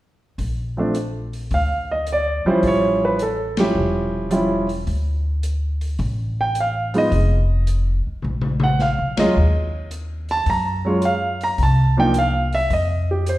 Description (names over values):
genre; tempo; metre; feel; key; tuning
jazz piano trio; 107 BPM; 4/4; swing 68% on 8ths; unclear; A4 = 441 Hz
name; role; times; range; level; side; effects
upright bass; bass; 0.4-13.4 s; E1 to Gb2; -22 LUFS; equal; none
open jazz drum kit; drums; 0.4-13.4 s; hi-hat, kick drum, ride cymbal, snare drum, toms; -26 LUFS; left 2 dB; none
warm grand piano; melody; 0.8-13.4 s; F3 to Bb5; -19 LUFS; right 1 dB; none
room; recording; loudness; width
wet recital hall reverb, RT60 1.3 s; recorded in a church or concert hall; -18 LUFS; side -16 dB against mid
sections
0.4-13.4 A section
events
band accent 3.5, 9.1; drum fill 8.2-8.8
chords
0.4 Bb; 2.6 A7b13; 4.9 Dm; 7.1 Ebsus2/F; 8.2 Bb(b9); 9.4 Ebmadd9; 11.6 Csus4; 12.7 N.C.